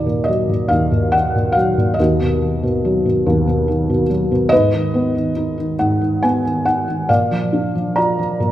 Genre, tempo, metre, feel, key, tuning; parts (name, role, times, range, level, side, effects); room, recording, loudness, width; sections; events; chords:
classical, lyrical solo piano; 70 BPM; 3/4; rubato; Eb harmonic minor; A4 = 445 Hz
felt-muted upright piano; solo; 0.0-8.5 s; Eb2 to Bb5; -15 LUFS; equal
moderate scoring stage reverb, RT60 1.6 s; minimal, uncompressed stereo recording; -15 LUFS; side -13 dB against mid
0.0-8.5 A section
0.0 Ebm; 2.0 B/D#; 4.5 Abm; 7.1 Bb